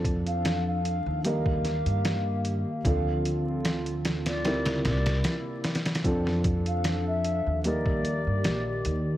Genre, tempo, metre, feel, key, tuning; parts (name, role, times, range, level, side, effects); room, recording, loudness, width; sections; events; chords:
trip hop; 75 BPM; 4/4; swing 53% on 16ths; A4 = 440 Hz
felt-muted upright piano; accompaniment; 0.0-9.2 s; F3 to Bb4; -32 LUFS; equal; harmonic tremolo, tape echo
warbly tape-like pad; sustained chords; 0.2-9.2 s; C3 to A4; -35 LUFS; equal; chorus, built-in reverb
upright bass; bass; 0.0-9.2 s; Bb1 to G2; -29 LUFS; equal
trip hop sampler-style drum kit; drums; 0.0-9.1 s; hi-hat, kick drum, snare drum; -29 LUFS; equal
mellow baroque flute; melody; 0.3-9.1 s; D5 to F5; -33 LUFS; left 1 dB; tape echo
light reverb, small room ambience; worn, warbling old tape, cassette tape, vinyl crackle, warbly pitch drift; -25 LUFS; side -13 dB against mid
0.0-9.2 A section
0.0 F6; 1.2 Eb; 2.8 Dm7; 4.4 C7; 6.0 F6; 7.6 Eb